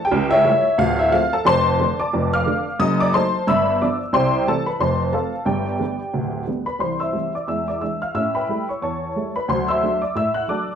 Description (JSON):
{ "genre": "jazz, stride piano", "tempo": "180 BPM", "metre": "4/4", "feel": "swing 58% on 8ths", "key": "C major", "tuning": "A4 = 440 Hz", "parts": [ { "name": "honky-tonk upright piano", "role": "solo", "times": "0.0-10.8 s", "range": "D1 to F#6", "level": "-18 LUFS", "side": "equal", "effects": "none" } ], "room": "moderate large studio reverb, RT60 0.9 s", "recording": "band playing live in one room", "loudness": "-18 LUFS", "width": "side -8 dB against mid", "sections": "0.0-6.8 A section; 6.8-10.8 B section", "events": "none", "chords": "0.1 A7/C#; 0.8 Dm7; 1.5 Dm/F; 2.8 F#dim7; 3.5 G7; 4.1 C; 4.8 F; 5.5 G; 6.8 C; 7.5 E7; 8.1 A7; 9.5 D7", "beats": "| 0.12 0.46 0.79 1.13 | 1.46 1.80 2.13 2.46 | 2.80 3.13 3.47 3.80 | 4.13 4.47 4.80 5.14 | 5.47 5.80 6.14 6.47 | 6.81 7.14 7.47 7.81 | 8.14 8.48 8.81 9.15 | 9.48 9.82 10.15 10.49" }